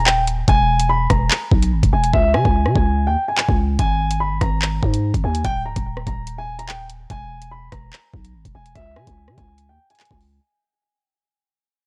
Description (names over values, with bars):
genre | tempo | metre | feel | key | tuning
hip hop, drill | 145 BPM | 4/4 | half-time | unclear | A4 = 438 Hz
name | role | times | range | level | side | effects
dark baby grand piano | melody | 0.0-10.2 s | E5 to B5 | -24 LUFS | equal | none
growling 808-style bass | bass | 0.0-10.4 s | C#1 to C#3 | -23 LUFS | equal | none
drill drum kit | drums | 0.1-10.3 s | handclaps, hi-hat, kick drum, rim click | -22 LUFS | equal | overdrive
room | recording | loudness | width
little or no reverb | dry, gritty hardware recording, cassette tape | -18 LUFS | mono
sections
0.0-10.4 A section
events
fade-out 0.0-10.4; hi-hats muted 2.1-3.8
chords
0.5 E; 2.1 C#5; 3.8 G#5; 5.4 D#5; 7.1 E; 8.8 C#5